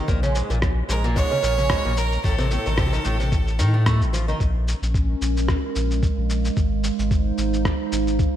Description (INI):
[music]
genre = folktronica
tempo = 111 BPM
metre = 4/4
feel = swing 56% on 16ths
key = Bb minor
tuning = A4 = 440 Hz
[part]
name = fingerpicked twelve-string acoustic guitar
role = arpeggios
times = 0.0-4.4 s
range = Ab2 to A3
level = -26 LUFS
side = equal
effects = analog delay
[part]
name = warm sub bass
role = bass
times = 0.1-8.3 s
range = Ab1 to A2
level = -22 LUFS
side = equal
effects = none
[part]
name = electronic cabasa and rim click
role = drums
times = 0.1-8.3 s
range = none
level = -31 LUFS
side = equal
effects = none
[part]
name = electronic kick drum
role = drums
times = 0.1-8.3 s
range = none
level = -23 LUFS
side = equal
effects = none
[part]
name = clear violin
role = melody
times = 0.9-3.8 s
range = A4 to Db5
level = -26 LUFS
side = right 4 dB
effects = analog delay
[part]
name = warbly tape-like pad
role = sustained chords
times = 4.9-8.4 s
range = Ab3 to F5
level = -25 LUFS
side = right 4 dB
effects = chorus, built-in reverb
[sound]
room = light reverb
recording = none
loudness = -19 LUFS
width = side -11 dB against mid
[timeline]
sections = 0.0-4.4 A section; 4.4-8.4 A section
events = none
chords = 0.1 Bbm7; 2.2 F7/A; 4.4 Bbm7; 6.6 Fm7/Ab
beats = | 0.08 0.62 1.16 1.70 | 2.24 2.78 3.33 3.87 | 4.41 4.95 5.49 6.03 | 6.57 7.11 7.65 8.19